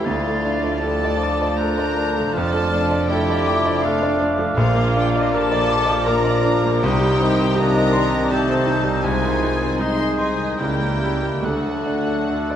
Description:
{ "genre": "classical", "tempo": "69-83 BPM", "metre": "3/4", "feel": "rubato", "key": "D minor", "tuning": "A4 = 438 Hz", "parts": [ { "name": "clear concert grand piano", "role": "melody", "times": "0.0-12.6 s", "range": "Bb1 to D6", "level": "-21 LUFS", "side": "left 1 dB", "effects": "none" }, { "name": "warm chamber violin section", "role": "melody", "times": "0.0-12.6 s", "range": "Eb5 to C6", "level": "-29 LUFS", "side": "left 1 dB", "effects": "none" }, { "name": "clear clarinet", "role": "second line", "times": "0.0-12.6 s", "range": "C4 to G4", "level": "-30 LUFS", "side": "left 1 dB", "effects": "none" }, { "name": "hollow concert flute", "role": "second line", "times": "0.0-12.6 s", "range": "D6 to A6", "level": "-29 LUFS", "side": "left 1 dB", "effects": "none" }, { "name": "warm chamber violin section", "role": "second line", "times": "0.0-12.6 s", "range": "F4 to C5", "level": "-30 LUFS", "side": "left 2 dB", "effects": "none" }, { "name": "warm oboe", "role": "second line", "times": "0.0-12.6 s", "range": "Ab4 to F5", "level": "-30 LUFS", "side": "right 1 dB", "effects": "none" }, { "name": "warm bassoon", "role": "accompaniment", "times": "0.0-12.6 s", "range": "Eb3 to Bb3", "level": "-28 LUFS", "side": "right 1 dB", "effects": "none" }, { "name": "warm studio viola section", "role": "accompaniment", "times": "0.0-12.6 s", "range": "C3 to F4", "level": "-29 LUFS", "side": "right 2 dB", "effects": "none" }, { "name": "dark chamber cello section", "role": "bass", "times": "0.0-12.6 s", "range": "D2 to D3", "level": "-30 LUFS", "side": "right 3 dB", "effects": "none" }, { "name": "dark chamber double bass section", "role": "bass", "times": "0.0-12.6 s", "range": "F1 to D2", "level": "-28 LUFS", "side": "right 2 dB", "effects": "none" }, { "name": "dark French horn section", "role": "sustained chords", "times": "0.1-12.6 s", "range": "Eb3 to E4", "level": "-27 LUFS", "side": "left 2 dB", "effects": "none" } ], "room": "wet scoring stage reverb, RT60 1.8 s", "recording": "none", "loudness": "-17 LUFS", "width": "side -10 dB against mid", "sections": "0.0-12.6 A section", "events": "none", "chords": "0.0 Dm; 2.3 Dm/F; 4.6 Bb; 6.8 Cm; 9.1 Ab/C; 10.6 C#dim7; 11.4 D", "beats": "| 0.04 0.80 1.57 | 2.33 3.08 3.84 | 4.58 5.34 6.08 | 6.85 7.59 8.32 | 9.06 9.81 10.60 | 11.43 12.29" }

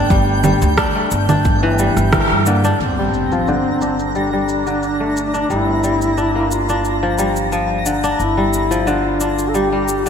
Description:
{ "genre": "organic downtempo", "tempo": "89 BPM", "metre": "4/4", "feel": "straight", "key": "G dorian", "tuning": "A4 = 439 Hz", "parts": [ { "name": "kora", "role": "arpeggios", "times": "0.0-10.1 s", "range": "D3 to D4", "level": "-18 LUFS", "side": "left 2 dB", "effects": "low-pass filter, digital delay" }, { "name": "twinkling granular texture", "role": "texture", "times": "0.0-10.1 s", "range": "G5 to Bb5", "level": "-27 LUFS", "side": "right 1 dB", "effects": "built-in reverb, wide subtle chorus" }, { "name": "upright bass", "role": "bass", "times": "0.1-10.1 s", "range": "G1 to G2", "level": "-21 LUFS", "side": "right 1 dB", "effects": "tube saturation" }, { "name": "electronic kick drum", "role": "drums", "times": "0.1-2.3 s", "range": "none", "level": "-18 LUFS", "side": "equal", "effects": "none" }, { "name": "electronic shaker, congas and rim click", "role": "drums", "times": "0.1-10.1 s", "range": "none", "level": "-21 LUFS", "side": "right 2 dB", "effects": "low-pass filter on perc, low-pass filter on snare, gated reverb" }, { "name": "dark duduk", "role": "melody", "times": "2.5-10.1 s", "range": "Bb3 to A4", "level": "-21 LUFS", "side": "left 1 dB", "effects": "digital delay" }, { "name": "impact", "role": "sound effects", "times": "2.8-5.5 s", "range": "none", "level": "-27 LUFS", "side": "equal", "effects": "none" } ], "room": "wet lush hall reverb, RT60 2.5 s", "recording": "bright 1980s-style digital production", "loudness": "-14 LUFS", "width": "side -7 dB against mid", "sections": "0.0-2.8 A section; 2.8-10.1 B section", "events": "band accent 2.1-2.5; impact 2.8-5.5; filter sweep on drum 2.8-10.1; filter sweep on kora 2.8-10.1", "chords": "0.0 A5/G; 2.8 Gm7", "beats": "| 0.11 0.78 1.46 2.13 | 2.80 3.48 4.15 4.83 | 5.50 6.17 6.85 7.52 | 8.20 8.87 9.54" }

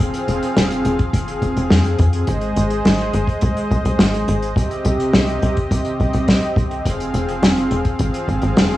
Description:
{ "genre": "synthwave", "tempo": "105 BPM", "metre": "4/4", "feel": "straight", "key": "F minor", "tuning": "A4 = 442 Hz", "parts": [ { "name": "soft supersaw", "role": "sustained chords", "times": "0.0-8.8 s", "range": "C3 to F5", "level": "-21 LUFS", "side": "equal", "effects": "sidechain pumping" }, { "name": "tight sequencer bass", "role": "bass", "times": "0.0-8.8 s", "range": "F1 to F2", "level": "-19 LUFS", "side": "equal", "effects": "none" }, { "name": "kick drum", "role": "drums", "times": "0.0-8.4 s", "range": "none", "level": "-22 LUFS", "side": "equal", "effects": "cassette tape" }, { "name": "unplugged drum kit", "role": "drums", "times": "0.1-8.8 s", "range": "hi-hat, snare drum", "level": "-18 LUFS", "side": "equal", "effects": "cassette tape" } ], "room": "wet studio reverb, RT60 0.6 s", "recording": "home recording on cassette, small room ambience", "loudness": "-15 LUFS", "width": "side -15 dB against mid", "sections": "0.0-8.8 A section", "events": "none", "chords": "0.0 Fm; 2.3 Ab; 4.6 Cm; 6.9 Fm", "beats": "0.57 1.14 1.71 | 2.28 2.85 3.42 3.99 | 4.57 5.14 5.71 6.28 | 6.85 7.42 7.99 8.57" }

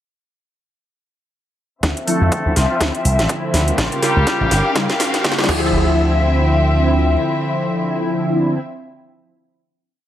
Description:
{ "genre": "filtered disco house", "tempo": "123 BPM", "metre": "4/4", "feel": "swing 57% on 16ths", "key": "D minor", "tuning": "A4 = 440 Hz", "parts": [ { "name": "dark chamber string section", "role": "sustained chords", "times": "1.8-8.6 s", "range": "F3 to F5", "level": "-22 LUFS", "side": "left 2 dB", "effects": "sidechain pumping, low-pass filter" }, { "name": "slap bass with an envelope filter", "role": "bass", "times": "1.8-7.2 s", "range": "G1 to F2", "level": "-17 LUFS", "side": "equal", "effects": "sidechain pumping, low-pass filter" }, { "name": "electronic kick drum", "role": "drums", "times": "1.8-5.6 s", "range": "none", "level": "-23 LUFS", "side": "equal", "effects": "overdrive, high-pass filter on kick, high-pass filter on room" }, { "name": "house drum kit", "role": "drums", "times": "1.8-5.6 s", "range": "crash cymbal, hi-hat, snare drum", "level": "-22 LUFS", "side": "equal", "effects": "overdrive, high-pass filter on snare, sidechain pumping on hats, high-pass filter on hats, sidechain pumping on cymbals, high-pass filter on cymbals, high-pass filter on room" }, { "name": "riser", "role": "sound effects", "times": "3.4-5.7 s", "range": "none", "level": "-27 LUFS", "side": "equal", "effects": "none" }, { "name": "brilliant horn section", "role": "melody", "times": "2.1-4.7 s", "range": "F3 to A4", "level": "-22 LUFS", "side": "left 1 dB", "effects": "sidechain pumping, low-pass filter, digital delay" }, { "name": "mellow synth brass", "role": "accompaniment", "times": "2.1-8.6 s", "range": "C#3 to F4", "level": "-20 LUFS", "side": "equal", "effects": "chorus, phaser, sidechain pumping, low-pass filter" } ], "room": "light reverb, digital ambience", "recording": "none", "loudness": "-15 LUFS", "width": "side -11 dB against mid", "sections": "1.8-5.7 build; 5.7-9.6 final hit", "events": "build-up 1.8-5.7; drum fill 1.8-5.7; filter sweep on horn section 1.8-5.7; filter sweep 1.8-5.7; riser 3.4-5.7", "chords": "1.8 Dm9; 3.8 A7b9b13 (rootless); 5.5 Dm9", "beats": "| 1.83 2.32 2.81 3.29 | 3.78 4.27 4.76 5.25 | 5.73 6.22 6.71 7.20 | 7.68 8.17" }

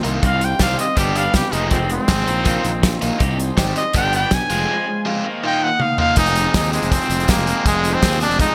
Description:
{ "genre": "indie rock", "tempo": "162 BPM", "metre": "4/4", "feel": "straight", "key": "unclear", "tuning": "A4 = 440 Hz", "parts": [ { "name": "clear trumpet", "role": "melody", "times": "0.0-8.5 s", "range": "Ab3 to Ab5", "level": "-22 LUFS", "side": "equal", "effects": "none" }, { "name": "warm analog pad", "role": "sustained chords", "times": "0.0-8.5 s", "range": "F4 to Eb6", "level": "-36 LUFS", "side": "equal", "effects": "none" }, { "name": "crunchy overdriven guitar", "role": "riff", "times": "0.0-6.2 s", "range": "Eb3 to G4", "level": "-28 LUFS", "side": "equal", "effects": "lush chorus, digital delay" }, { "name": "overdriven electric guitar", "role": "riff", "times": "0.0-8.5 s", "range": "F2 to Ab4", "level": "-26 LUFS", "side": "equal", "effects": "none" }, { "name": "fuzz fingered electric bass", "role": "bass", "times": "0.0-8.4 s", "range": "F1 to Eb2", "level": "-25 LUFS", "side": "equal", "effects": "overdrive" }, { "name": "loose indie drum kit", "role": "drums", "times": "0.0-8.5 s", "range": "hi-hat, kick drum, snare drum, toms", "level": "-23 LUFS", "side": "equal", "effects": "none" }, { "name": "tambourine", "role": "percussion", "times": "0.2-8.5 s", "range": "none", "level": "-39 LUFS", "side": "equal", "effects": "none" } ], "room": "moderate plate reverb, RT60 1.7 s, small room ambience", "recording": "bright 1980s-style digital production", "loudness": "-18 LUFS", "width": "mono", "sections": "0.0-6.2 A section; 6.2-8.5 B section", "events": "trumpet solo 0.0-6.2; drum fill 5.8-6.2", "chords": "0.2 Cm; 1.0 G; 1.5 Fm; 2.3 Bbsus4; 3.2 Cm; 3.9 G; 4.5 Fm; 5.2 Bbsus4; 6.2 Fm7", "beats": "| 0.23 0.60 0.97 1.34 | 1.72 2.09 2.46 2.83 | 3.20 3.58 3.95 4.32 | 4.69 5.06 5.43 5.80 | 6.17 6.55 6.92 7.29 | 7.66 8.03 8.39" }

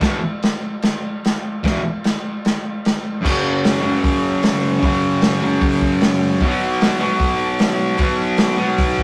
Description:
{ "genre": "garage rock duo or trio", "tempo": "151 BPM", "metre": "4/4", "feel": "straight", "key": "unclear", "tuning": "A4 = 444 Hz", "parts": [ { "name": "fuzz guitar", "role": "riff", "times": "0.0-9.0 s", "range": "E2 to B3", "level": "-20 LUFS", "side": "equal", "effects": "distortion" }, { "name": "crunchy breakbeat drum kit", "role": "drums", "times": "0.0-9.0 s", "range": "crash cymbal, hi-hat, kick drum, snare drum", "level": "-22 LUFS", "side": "equal", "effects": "none" } ], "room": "moderate studio reverb, RT60 0.6 s", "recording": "rough rehearsal-room recording", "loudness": "-18 LUFS", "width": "mono", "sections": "0.0-3.2 A section; 3.2-9.0 B section", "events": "none", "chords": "0.0 E5; 3.2 F#5; 6.4 B5", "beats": "| 0.01 0.42 0.82 1.22 | 1.62 2.03 2.43 2.83 | 3.23 3.63 4.03 4.43 | 4.83 5.22 5.62 6.02 | 6.42 6.81 7.21 7.61 | 8.00 8.40 8.79" }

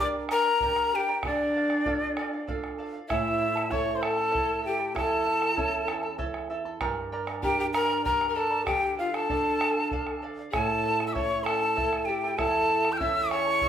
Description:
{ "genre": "andean folk, Andean ensemble", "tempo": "97 BPM", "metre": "3/4", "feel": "straight", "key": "unclear", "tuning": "A4 = 443 Hz", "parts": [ { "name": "breathy quena", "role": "melody", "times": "0.0-13.7 s", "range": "D5 to G6", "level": "-26 LUFS", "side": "left 1 dB", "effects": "none" }, { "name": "breathy bright pan flute", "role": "second line", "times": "0.0-13.7 s", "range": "D4 to G5", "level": "-30 LUFS", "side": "left 4 dB", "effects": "none" }, { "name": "charango", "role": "accompaniment", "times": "0.0-13.7 s", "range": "E4 to Bb5", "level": "-34 LUFS", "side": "right 4 dB", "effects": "none" }, { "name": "flamenco guitar", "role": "accompaniment", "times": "0.0-13.7 s", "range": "E2 to Bb4", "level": "-35 LUFS", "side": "right 5 dB", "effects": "none" }, { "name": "bombo", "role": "percussion", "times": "0.1-13.7 s", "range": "none", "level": "-35 LUFS", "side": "right 2 dB", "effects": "none" } ], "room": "wet large studio reverb, RT60 0.8 s", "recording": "band playing live in one room", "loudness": "-24 LUFS", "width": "side -9 dB against mid", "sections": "0.0-3.1 A section; 3.1-13.7 A section", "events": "none", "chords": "0.0 Gm; 1.2 Dm; 3.1 A; 6.8 Gm; 8.7 Dm; 10.5 A", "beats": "0.61 | 1.23 1.85 2.47 | 3.09 3.71 4.33 | 4.96 5.58 6.19 | 6.81 7.43 8.05 | 8.67 9.29 9.91 | 10.53 11.15 11.77 | 12.38 13.00 13.62" }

